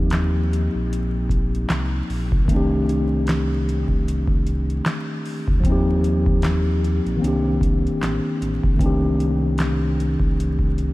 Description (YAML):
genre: lo-fi hip hop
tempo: 76 BPM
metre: 4/4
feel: swing 56% on 16ths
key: C dorian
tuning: A4 = 445 Hz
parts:
  - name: mellow tine electric piano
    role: accompaniment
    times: 0.0-10.9 s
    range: D3 to G4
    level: -22 LUFS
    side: left 1 dB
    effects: fast stereo tremolo
  - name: sub bass with octave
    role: bass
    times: 0.0-10.9 s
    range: A1 to Eb2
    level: -23 LUFS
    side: equal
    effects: none
  - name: booming analog drum machine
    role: drums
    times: 0.1-10.9 s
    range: handclaps, hi-hat, kick drum, snare drum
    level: -24 LUFS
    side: equal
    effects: none
room: light reverb, digital ambience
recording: vinyl crackle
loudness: -18 LUFS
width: side -19 dB against mid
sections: 0.0-8.8 A section; 8.8-10.9 B section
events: none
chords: 0.0 Eb69; 2.5 Cm69; 5.6 Eb69; 7.2 Cm9; 8.8 Cm69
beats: 0.11 0.90 1.69 | 2.48 3.27 4.06 4.85 | 5.64 6.43 7.22 8.01 | 8.80 9.59 10.38